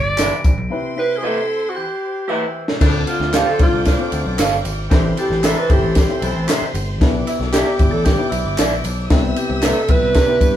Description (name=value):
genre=uptempo 1960s-style soul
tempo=114 BPM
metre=4/4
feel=straight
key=D dorian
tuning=A4 = 438 Hz
part: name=breathy tenor saxophone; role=melody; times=0.0-10.6 s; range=E4 to D5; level=-20 LUFS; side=right 1 dB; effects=none
part: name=dark studio string section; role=second line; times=0.0-10.6 s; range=C5 to E6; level=-31 LUFS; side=equal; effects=none
part: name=glockenspiel with soft plastic mallets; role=second line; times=0.0-10.6 s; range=E6 to D7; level=-31 LUFS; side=right 1 dB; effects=none
part: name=picked electric bass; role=bass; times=0.0-10.6 s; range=G1 to C3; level=-23 LUFS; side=equal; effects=none
part: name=dark horn section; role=second line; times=0.2-6.7 s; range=A2 to A4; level=-27 LUFS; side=left 1 dB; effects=none
part: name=electric guitar through a small old amp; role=stabs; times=0.2-9.8 s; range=G4 to F5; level=-21 LUFS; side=right 2 dB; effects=none
part: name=compact cocktail drum kit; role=drums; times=0.2-10.5 s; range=crash cymbal, hi-hat, kick drum, ride cymbal, snare drum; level=-18 LUFS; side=equal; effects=none
part: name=handclaps and tambourine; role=percussion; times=0.2-10.5 s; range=none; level=-31 LUFS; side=left 1 dB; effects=none
part: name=dark upright piano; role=accompaniment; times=0.7-10.6 s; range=A2 to C5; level=-25 LUFS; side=left 4 dB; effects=none
room=moderate studio reverb, RT60 0.6 s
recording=band playing live in one room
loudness=-15 LUFS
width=side -11 dB against mid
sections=0.0-2.8 A section; 2.8-10.6 B section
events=break 0.7-2.8; drum fill 2.3-2.8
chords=0.0 Em7; 0.7 Cmaj7; 2.8 Dm7; 4.9 Am7; 7.0 Em7; 9.1 Cmaj7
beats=0.18 | 0.71 1.24 1.76 2.29 | 2.81 3.33 3.86 4.38 | 4.91 5.43 5.96 6.48 | 7.01 7.53 8.05 8.58 | 9.10 9.63 10.15